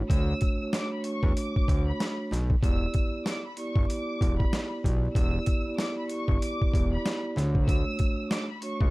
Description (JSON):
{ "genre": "hip hop, boom-bap hip-hop", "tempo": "95 BPM", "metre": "4/4", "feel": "swing 61% on 16ths", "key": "E dorian", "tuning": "A4 = 436 Hz", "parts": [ { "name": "vibraphone with soft mallets", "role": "accompaniment", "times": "0.0-8.9 s", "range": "A3 to D5", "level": "-32 LUFS", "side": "right 1 dB", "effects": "high-pass filter, low-pass filter" }, { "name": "fat analog bass", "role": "bass", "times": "0.0-8.9 s", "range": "E1 to E2", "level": "-28 LUFS", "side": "equal", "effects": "none" }, { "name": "warm studio violin section", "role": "melody", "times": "0.1-8.9 s", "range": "B5 to E6", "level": "-38 LUFS", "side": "left 1 dB", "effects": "high-pass filter, low-pass filter, digital delay" }, { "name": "boom bap sampler-style drum kit", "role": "drums", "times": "0.1-8.9 s", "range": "hi-hat, kick drum, snare drum", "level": "-26 LUFS", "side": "equal", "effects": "none" } ], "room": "small room ambience", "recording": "vinyl crackle", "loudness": "-25 LUFS", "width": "side -21 dB against mid", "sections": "0.0-8.9 A section", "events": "none", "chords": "0.0 Dmaj7; 2.6 Em7; 7.4 Dmaj7" }